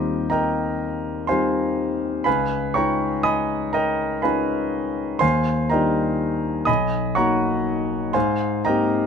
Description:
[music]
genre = classical, impressionist solo piano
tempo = 41 BPM (dotted quarters)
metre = 6/8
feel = rubato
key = Eb major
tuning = A4 = 441 Hz
[part]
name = clear concert grand piano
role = solo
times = 0.0-9.1 s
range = B1 to Eb6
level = -20 LUFS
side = equal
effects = none
[sound]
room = moderate studio reverb, RT60 0.5 s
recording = minimal, uncompressed stereo recording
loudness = -20 LUFS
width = side -6 dB against mid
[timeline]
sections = 0.0-9.1 A section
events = none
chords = 0.0 Eb69; 2.3 Db9; 5.2 Ebmaj9; 6.7 Bmaj7; 8.1 Abmaj9

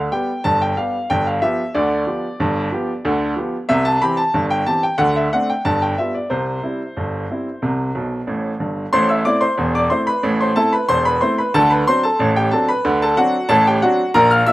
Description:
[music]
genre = ragtime piano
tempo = 92 BPM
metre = 2/4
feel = straight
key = C major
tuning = A4 = 440 Hz
[part]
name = bright upright piano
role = solo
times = 0.0-14.5 s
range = E1 to F6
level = -16 LUFS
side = equal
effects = none
[sound]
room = little or no reverb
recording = recorded outdoors, with no room sound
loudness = -16 LUFS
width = side -17 dB against mid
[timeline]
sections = 0.0-8.9 A section; 8.9-14.5 B section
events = upright piano fill 7.9-8.9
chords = 0.0 G; 1.1 G7; 3.7 C; 5.0 D5; 5.6 G7; 6.3 C; 8.9 Am; 11.5 D7

